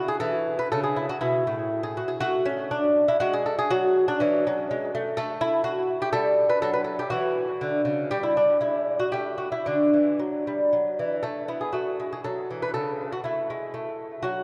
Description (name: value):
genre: classical, baroque-style dance for lute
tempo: 121 BPM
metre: 3/4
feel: rubato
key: D major from 5.2 s, A major from 11.2 s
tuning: A4 = 443 Hz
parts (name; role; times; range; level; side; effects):
- lute; solo; 0.0-14.4 s; A2 to B4; -25 LUFS; equal; analog delay
room: wet cathedral reverb, RT60 4.5 s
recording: dreamy mix soaked in reverb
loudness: -25 LUFS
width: mono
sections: 0.0-11.2 A section; 11.2-14.4 A section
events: none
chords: 0.0 C#m (rootless); 0.7 A; 2.2 Dmaj7#11; 3.7 F#m; 5.2 Gmaj7sus2; 6.6 D; 8.1 N.C.; 9.7 D; 11.2 A5; 12.8 A/C#